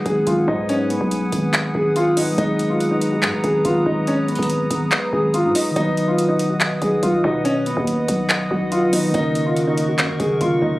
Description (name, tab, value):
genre	hip hop, trap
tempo	142 BPM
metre	4/4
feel	half-time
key	G# dorian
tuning	A4 = 439 Hz
part	dark grand piano	melody	0.0-10.8 s	B3 to G#4	-20 LUFS	equal	none
part	mellow tine electric piano	accompaniment	0.0-10.8 s	D#3 to B4	-24 LUFS	right 1 dB	none
part	hollow soft pad	sustained chords	0.0-10.8 s	A#4 to D#6	-27 LUFS	equal	chorus
part	impact	sound effects	0.0-0.7 s	none	barely audible	none	none
part	growling 808-style bass	bass	0.1-10.8 s	F#1 to B2	-24 LUFS	equal	none
part	booming analog drum machine	drums	0.1-10.8 s	handclaps, hi-hat, kick drum	-25 LUFS	equal	none
room	digital ambience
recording	recorded on a phone in the room, studio ambience, compression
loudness	-17 LUFS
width	side -18 dB against mid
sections	0.0-10.8 A section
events	impact 0.0-0.7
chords	0.0 G#m7; 5.8 B; 9.1 F#6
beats	0.27 | 0.69 1.11 1.54 1.96 | 2.38 2.80 3.23 3.65 | 4.07 4.49 4.92 5.34 | 5.76 6.18 6.61 7.03 | 7.45 7.87 8.30 8.72 | 9.14 9.56 9.99 10.41